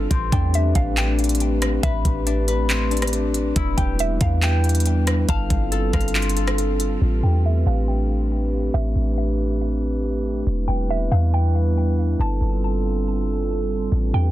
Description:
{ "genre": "hip hop, atmospheric cloud-rap", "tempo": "139 BPM", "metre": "4/4", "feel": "half-time", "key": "A minor", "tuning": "A4 = 440 Hz", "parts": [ { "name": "glass harmonica", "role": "sustained chords", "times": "0.0-14.3 s", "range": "G3 to B4", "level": "-25 LUFS", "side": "right 1 dB", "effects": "stereo widening, sidechain pumping, low-pass filter" }, { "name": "concert harp", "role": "arpeggios", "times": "0.0-8.7 s", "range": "C4 to F5", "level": "-29 LUFS", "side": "left 9 dB", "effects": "ping-pong delay" }, { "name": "clean 808-style bass", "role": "bass", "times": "0.0-14.3 s", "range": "E1 to E2", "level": "-21 LUFS", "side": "equal", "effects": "none" }, { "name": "trap drum kit", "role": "drums", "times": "0.1-6.9 s", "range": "handclaps, hi-hat, kick drum, rim click", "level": "-24 LUFS", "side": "equal", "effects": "overdrive" }, { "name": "mallet-like synth pluck", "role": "melody", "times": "0.3-14.3 s", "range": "E5 to A5", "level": "-31 LUFS", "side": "right 1 dB", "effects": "chorus, phaser, low-pass filter, ping-pong delay" } ], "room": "little or no reverb", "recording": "dense, heavily limited modern master", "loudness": "-18 LUFS", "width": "side -14 dB against mid", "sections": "0.0-7.0 A section; 7.0-14.3 B section", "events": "filter sweep 7.0-14.3", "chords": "0.1 Am11; 3.6 Em7; 5.3 G9sus4; 7.0 Am11; 10.5 Em7; 12.2 G9sus4", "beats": "| 0.11 0.54 0.97 1.40 | 1.83 2.27 2.70 3.13 | 3.56 3.99 4.42 4.86 | 5.29 5.72 6.15 6.58 | 7.01 7.45 7.88 8.31 | 8.74 9.17 9.60 10.04 | 10.47 10.90 11.33 11.76 | 12.19 12.63 13.06 13.49 | 13.92" }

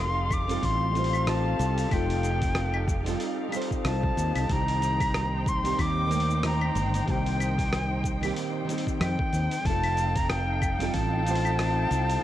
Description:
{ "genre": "sunset chillout", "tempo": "93 BPM", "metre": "4/4", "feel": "swing 57% on 16ths", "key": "unclear", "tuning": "A4 = 440 Hz", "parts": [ { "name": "bright reedy jazz flute", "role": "melody", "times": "0.0-12.2 s", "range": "G5 to D6", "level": "-30 LUFS", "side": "equal", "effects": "tape echo, shimmer reverb" }, { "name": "nylon-string guitar", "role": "accompaniment", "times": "0.0-12.2 s", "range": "Eb3 to C5", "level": "-32 LUFS", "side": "moving between left 7 dB and right 5 dB", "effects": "auto-pan, tape echo, shimmer reverb" }, { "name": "muted studio string section", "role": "sustained chords", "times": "0.0-12.2 s", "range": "Bb2 to G5", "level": "-36 LUFS", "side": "equal", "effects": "shimmer reverb" }, { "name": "mellow fretless electric bass", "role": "bass", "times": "0.0-12.2 s", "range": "F1 to F2", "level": "-28 LUFS", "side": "equal", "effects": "none" }, { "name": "dusty soul sampler-style drum kit", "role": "drums", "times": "0.3-12.2 s", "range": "claves, hi-hat, rim click, shaker", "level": "-35 LUFS", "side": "left 1 dB", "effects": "overdrive" }, { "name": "electronic kick drum", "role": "drums", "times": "0.3-11.1 s", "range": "none", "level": "-30 LUFS", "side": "equal", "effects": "overdrive" } ], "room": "light reverb, digital ambience", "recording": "worn, warbling old tape, cassette tape, warbly pitch drift", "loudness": "-24 LUFS", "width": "side -12 dB against mid", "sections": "0.0-12.2 A section", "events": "none", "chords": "0.0 F9; 4.5 Cm7; 9.7 F9", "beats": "0.62 1.27 | 1.92 2.56 3.21 3.85 | 4.50 5.14 5.79 6.43 | 7.08 7.72 8.37 9.01 | 9.66 10.30 10.95 11.59" }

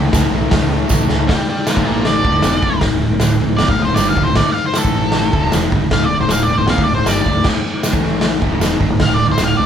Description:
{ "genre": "garage rock duo or trio", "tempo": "155 BPM", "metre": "4/4", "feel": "straight", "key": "unclear", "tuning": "A4 = 443 Hz", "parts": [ { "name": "fuzz guitar", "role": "riff", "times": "0.0-9.7 s", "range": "D2 to A3", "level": "-18 LUFS", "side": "right 1 dB", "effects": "distortion" }, { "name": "growling fingered electric bass", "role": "bass", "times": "0.0-9.7 s", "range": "D1 to C#2", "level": "-22 LUFS", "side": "equal", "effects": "overdrive" }, { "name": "raw garage drum kit", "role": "drums", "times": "0.1-9.5 s", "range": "crash cymbal, hi-hat, kick drum, snare drum", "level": "-16 LUFS", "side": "left 1 dB", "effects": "none" }, { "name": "tambourine", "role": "percussion", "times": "0.1-9.5 s", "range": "none", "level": "-30 LUFS", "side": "right 5 dB", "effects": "none" }, { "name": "octave-fuzz lead guitar", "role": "melody", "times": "1.3-9.7 s", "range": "D4 to F5", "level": "-18 LUFS", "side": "equal", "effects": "distortion" } ], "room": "light reverb", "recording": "band playing live in one room", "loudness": "-13 LUFS", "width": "side -8 dB against mid", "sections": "0.0-1.3 A section; 1.3-9.7 B section", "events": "drum fill 0.9-1.3; lead electric guitar solo 1.3-9.7", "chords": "0.0 A; 1.3 D5; 1.8 A5; 2.2 D5; 4.8 A5; 5.3 D5; 7.9 A5; 8.4 D5", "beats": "0.12 0.51 0.89 | 1.28 1.66 2.05 2.44 | 2.82 3.21 3.59 3.98 | 4.37 4.75 5.14 5.53 | 5.91 6.30 6.68 7.07 | 7.46 7.84 8.23 8.61 | 9.00 9.38" }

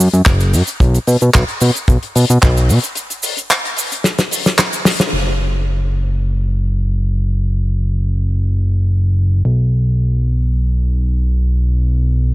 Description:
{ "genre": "nu-disco, nu disco", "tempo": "111 BPM", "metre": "4/4", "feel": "straight", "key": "unclear", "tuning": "A4 = 440 Hz", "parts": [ { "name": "fat analog bass", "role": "bass", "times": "0.0-12.3 s", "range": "F#1 to B2", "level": "-13 LUFS", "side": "equal", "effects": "tube saturation" }, { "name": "damped 70s drum kit", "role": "drums", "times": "0.0-5.1 s", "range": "cabasa, handclaps, hi-hat, snare drum", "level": "-16 LUFS", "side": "equal", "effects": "none" }, { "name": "kick drum", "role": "drums", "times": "0.3-2.5 s", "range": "none", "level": "-12 LUFS", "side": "equal", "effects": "none" } ], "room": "light reverb", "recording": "none", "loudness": "-13 LUFS", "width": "side -18 dB against mid", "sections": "0.0-5.1 A section; 5.1-12.3 B section", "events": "break 3.0-5.1; drum fill 4.0-5.1; band accent 5.0", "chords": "none", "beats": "0.26 | 0.80 1.34 1.88 2.42 | 2.96 3.51 4.05 4.59 | 5.13 5.67 6.21 6.75 | 7.29 7.83 8.37 8.91 | 9.45 9.99 10.53 11.07 | 11.61 12.15" }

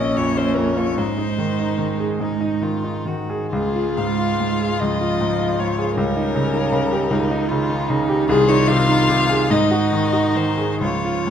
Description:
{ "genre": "classical, slow romantic movement for piano quartet", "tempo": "43-54 BPM (dotted quarters)", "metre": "6/8", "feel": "rubato", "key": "unclear", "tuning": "A4 = 440 Hz", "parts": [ { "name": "rich violin", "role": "melody", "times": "0.0-11.3 s", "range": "Ab4 to F5", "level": "-23 LUFS", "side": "left 5 dB", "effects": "none" }, { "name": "rich cello", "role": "second line", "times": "0.0-11.3 s", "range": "Eb3 to Bb3", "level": "-26 LUFS", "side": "right 6 dB", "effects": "none" }, { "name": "rich violin", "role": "second line", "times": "0.0-11.3 s", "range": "Db4 to Gb4", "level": "-25 LUFS", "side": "equal", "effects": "none" }, { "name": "bright grand piano", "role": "accompaniment", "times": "0.0-11.3 s", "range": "Bb1 to Ab4", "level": "-20 LUFS", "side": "equal", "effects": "none" } ], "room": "wet recital hall reverb, RT60 1.3 s", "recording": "dark, warm production", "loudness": "-17 LUFS", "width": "side -8 dB against mid", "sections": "0.0-11.3 A section", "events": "none", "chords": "0.0 Bbm; 1.0 Ab; 3.5 Db; 6.0 Eb7/Db; 8.3 Ab/C; 9.5 Ab5", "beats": "| 0.97 2.19 | 3.52 4.79 | 5.96 7.10 | 8.29 9.51 | 10.82" }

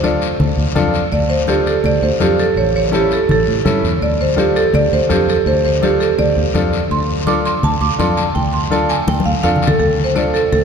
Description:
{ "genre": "latin, cumbia", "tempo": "166 BPM", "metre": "4/4", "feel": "straight", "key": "D minor", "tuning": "A4 = 442 Hz", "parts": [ { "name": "marimba with medium hard mallets", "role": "melody", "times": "0.0-10.6 s", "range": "G4 to D6", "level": "-16 LUFS", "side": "right 3 dB", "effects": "none" }, { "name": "bright upright piano", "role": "accompaniment", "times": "0.0-10.4 s", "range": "C#4 to A4", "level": "-21 LUFS", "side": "left 2 dB", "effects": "none" }, { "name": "fingered electric bass", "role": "bass", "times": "0.0-10.6 s", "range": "A1 to A2", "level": "-19 LUFS", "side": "equal", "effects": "none" }, { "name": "congas", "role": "percussion", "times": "0.0-10.6 s", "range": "none", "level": "-22 LUFS", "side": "left 3 dB", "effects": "none" }, { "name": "guiro", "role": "percussion", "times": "0.0-10.6 s", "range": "none", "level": "-28 LUFS", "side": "left 7 dB", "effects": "none" } ], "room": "wet cathedral reverb, RT60 4.8 s", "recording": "recorded in a church or concert hall", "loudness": "-13 LUFS", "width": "side -6 dB against mid", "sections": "0.0-9.8 A section", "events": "marimba solo 0.0-9.8; drum fill 9.1-9.8", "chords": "0.0 Dm; 2.6 A; 4.0 Dm", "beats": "0.04 0.40 0.76 | 1.12 1.49 1.85 2.21 | 2.57 2.93 3.29 3.65 | 4.02 4.38 4.74 5.10 | 5.46 5.83 6.19 6.55 | 6.91 7.27 7.63 7.99 | 8.36 8.72 9.08 9.44 | 9.80 10.16 10.52" }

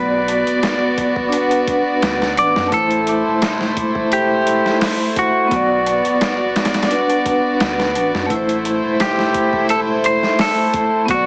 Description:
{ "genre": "trip hop", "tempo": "86 BPM", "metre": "4/4", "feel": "swing 53% on 16ths", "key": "A dorian", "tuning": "A4 = 439 Hz", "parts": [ { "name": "semi-hollow electric guitar", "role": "melody", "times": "0.0-11.3 s", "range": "F#4 to D5", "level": "-19 LUFS", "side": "equal", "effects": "vintage 12-bit sampler grit, tape echo" }, { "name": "vibraphone with medium hard mallets", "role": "accompaniment", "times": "0.0-11.3 s", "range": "A3 to F#5", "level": "-19 LUFS", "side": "equal", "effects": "tremolo, tape echo" }, { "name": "warm studio violin section", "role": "sustained chords", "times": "0.0-11.3 s", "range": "A3 to D5", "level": "-20 LUFS", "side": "equal", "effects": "none" }, { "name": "soft dub sub bass", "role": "bass", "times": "0.0-11.3 s", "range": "E1 to F#2", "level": "-32 LUFS", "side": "equal", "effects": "none" }, { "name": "dusty soul sampler-style drum kit", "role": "drums", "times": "0.3-11.3 s", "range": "hi-hat, kick drum, snare drum", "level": "-22 LUFS", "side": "equal", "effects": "overdrive, studio reverb" } ], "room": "light reverb, digital ambience", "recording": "heavily compressed radio sound, multiband compression, vinyl crackle, small speaker sound", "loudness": "-14 LUFS", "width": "side -31 dB against mid", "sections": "0.0-11.3 A section", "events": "none", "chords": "0.0 Bm; 1.3 D6; 2.7 Am; 5.5 Bm; 6.9 D6; 8.3 Am", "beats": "0.63 1.32 2.02 | 2.72 3.42 4.12 4.81 | 5.51 6.21 6.91 7.60 | 8.30 9.00 9.70 10.39 | 11.09" }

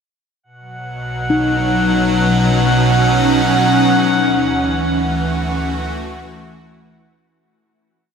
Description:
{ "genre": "ambient", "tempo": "70 BPM", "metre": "4/4", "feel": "straight", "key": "unclear", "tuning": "A4 = 439 Hz", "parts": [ { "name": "evolving wavetable pad", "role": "sustained chords", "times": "0.9-7.3 s", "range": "B2 to F#4", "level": "-15 LUFS", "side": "equal", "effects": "ensemble chorus, built-in reverb" }, { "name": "deep rumbling drone", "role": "bass", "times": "1.0-7.2 s", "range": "B1 to D2", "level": "-29 LUFS", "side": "equal", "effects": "built-in reverb" }, { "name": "drifting glass-harmonics texture", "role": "texture", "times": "0.7-7.3 s", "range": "F#5", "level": "-20 LUFS", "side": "equal", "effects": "chorus, built-in reverb" }, { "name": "handpan", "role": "arpeggios", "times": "1.3-4.3 s", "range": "D#4", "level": "-22 LUFS", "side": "left 3 dB", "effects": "diffuse ambient delay" } ], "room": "wet huge ambient reverb, RT60 8.6 s", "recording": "none", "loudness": "-13 LUFS", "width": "side -6 dB against mid", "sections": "0.4-7.3 A section", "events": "fade-in on synth drone 0.4-7.3; fade-out on handpan 0.4-7.3; fade-out 3.9-7.3", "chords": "0.4 B; 3.9 Dadd9", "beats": "| 0.43 1.29 2.15 3.00 | 3.86 4.72 5.58 6.43" }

